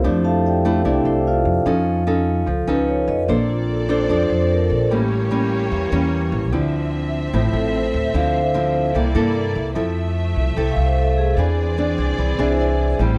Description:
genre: bossa nova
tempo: 148 BPM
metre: 4/4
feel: straight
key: unclear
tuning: A4 = 440 Hz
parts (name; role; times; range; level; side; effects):
- nylon-string guitar; accompaniment; 0.0-13.2 s; A2 to C5; -24 LUFS; equal; none
- vibraphone with medium mallets; accompaniment; 0.0-5.0, 7.5-13.0 s; C4 to A5; -24 LUFS; equal; none
- upright bass; bass; 0.0-13.2 s; A1 to G2; -24 LUFS; equal; none
- warm symphonic violin section; sustained chords; 3.3-13.2 s; A3 to E5; -30 LUFS; equal; none
room: little or no reverb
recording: dry, close 1970s-style studio recording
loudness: -19 LUFS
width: mono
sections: 0.0-9.8 A section; 9.8-13.2 A section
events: vibraphone solo 0.0-13.2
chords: 0.0 Fmaj13; 1.7 Faug7; 3.3 Bbmaj9; 4.9 A7b9; 6.5 Dm9; 8.9 C13; 9.8 Fmaj7; 11.4 Eaug7

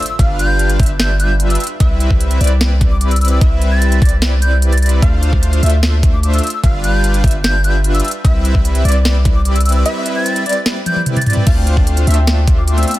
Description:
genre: future bass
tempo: 149 BPM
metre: 4/4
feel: half-time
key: C major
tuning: A4 = 440 Hz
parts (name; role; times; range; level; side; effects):
- breathy bright concert flute; melody; 0.0-12.9 s; D6 to A6; -22 LUFS; equal; sidechain pumping, digital delay
- trap drum kit; drums; 0.0-13.0 s; crash cymbal, hi-hat, snare drum, toms; -20 LUFS; equal; overdrive
- wide unison pluck; arpeggios; 0.2-12.9 s; D5 to F5; -26 LUFS; equal; sidechain pumping
- soft supersaw; riff; 0.2-12.9 s; G3 to F5; -20 LUFS; equal; sidechain pumping
- long sustained 808-style bass; bass; 0.2-12.8 s; G1 to D2; -14 LUFS; equal; sidechain pumping
- electronic kick drum; drums; 0.2-12.6 s; none; -13 LUFS; equal; overdrive
- Celtic harp; arpeggios; 11.5-13.0 s; A3 to F4; -25 LUFS; left 4 dB; sidechain pumping, digital delay
room: little or no reverb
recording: dense, heavily limited modern master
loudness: -11 LUFS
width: side -16 dB against mid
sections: 0.0-13.0 A section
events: break 9.9-11.5; drum fill 10.9-11.5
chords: 0.0 G7; 1.6 Cmaj7; 5.0 Dm7; 6.4 G7; 8.0 Cmaj7; 11.5 Dm7

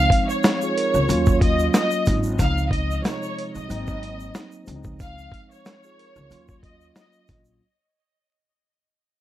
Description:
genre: hip hop, boom-bap hip-hop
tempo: 92 BPM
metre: 4/4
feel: swing 55% on 16ths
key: Db major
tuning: A4 = 441 Hz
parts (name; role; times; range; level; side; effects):
- rich studio violin section; melody; 0.0-7.2 s; Db5 to F5; -25 LUFS; right 1 dB; high-pass filter, low-pass filter, ping-pong delay
- mellow tine electric piano; accompaniment; 0.0-7.6 s; C3 to Bb4; -27 LUFS; equal; slow stereo tremolo, cassette tape, high-pass filter, low-pass filter
- upright bass; bass; 0.0-7.6 s; Ab1 to Eb2; -25 LUFS; equal; none
- dusty soul sampler-style drum kit; drums; 0.1-7.5 s; hi-hat, kick drum, snare drum; -21 LUFS; equal; none
- egg shaker; percussion; 0.3-7.6 s; none; -42 LUFS; right 5 dB; none
room: light reverb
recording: vinyl crackle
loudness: -19 LUFS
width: side -13 dB against mid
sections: 0.0-7.6 A section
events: fade-out 0.0-7.6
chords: 0.0 Dbmaj7; 1.1 Ebm7; 2.4 Dbmaj7; 3.7 Ab7; 4.7 Dbmaj7; 6.3 Ebm7

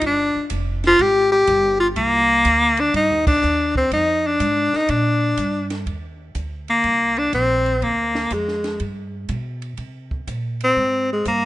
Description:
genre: jazz, small-group swing and bop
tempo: 123 BPM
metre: 4/4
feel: swing 67% on 8ths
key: Eb major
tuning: A4 = 440 Hz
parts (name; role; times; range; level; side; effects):
- clear tenor saxophone; melody; 0.0-11.5 s; Ab3 to G4; -16 LUFS; left 1 dB; none
- upright bass; bass; 0.0-11.5 s; F1 to C3; -26 LUFS; right 1 dB; none
- compact cocktail drum kit; drums; 0.0-11.4 s; crash cymbal, hi-hat, kick drum, ride cymbal, snare drum; -28 LUFS; right 1 dB; none
room: light reverb, studio reverb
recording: rough home demo mix, nothing above 10.8 kHz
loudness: -16 LUFS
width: side -16 dB against mid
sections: 0.0-5.9 A section; 5.9-11.5 B section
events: band accent 3.2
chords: 0.0 G5; 2.0 Cm9; 3.9 Fm; 4.9 Bb6; 5.9 Eb5; 7.8 Ddim; 8.8 G; 9.8 C5

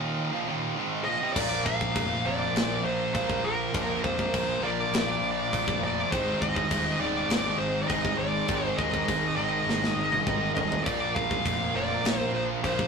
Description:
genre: heavy metal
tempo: 101 BPM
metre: 4/4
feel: straight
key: unclear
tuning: A4 = 438 Hz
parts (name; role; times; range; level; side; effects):
- warm symphonic string section; sustained chords; 0.0-12.9 s; Bb2 to Eb5; -39 LUFS; equal; none
- high-gain distorted guitar; riff; 0.0-12.9 s; Eb2 to Bb3; -31 LUFS; right 6 dB; distortion
- scooped high-gain guitar; riff; 0.0-12.9 s; Eb2 to Bb3; -33 LUFS; left 5 dB; distortion
- high-gain lead guitar; melody; 1.0-12.9 s; Bb4 to F5; -29 LUFS; left 1 dB; distortion
- fuzz fingered electric bass; bass; 1.4-12.9 s; Eb1 to F2; -38 LUFS; left 1 dB; overdrive
- tight metal drum kit; drums; 1.4-12.9 s; crash cymbal, kick drum, snare drum, toms; -31 LUFS; equal; none
room: moderate stone room reverb, RT60 1.0 s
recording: rough rehearsal-room recording, tube saturation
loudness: -25 LUFS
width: side -5 dB against mid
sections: 0.0-1.4 A section; 1.4-12.9 B section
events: break 0.0-1.4; drum fill 9.7-10.9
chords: 0.0 Eb5; 1.4 Bb; 6.1 Ab; 10.9 Bb

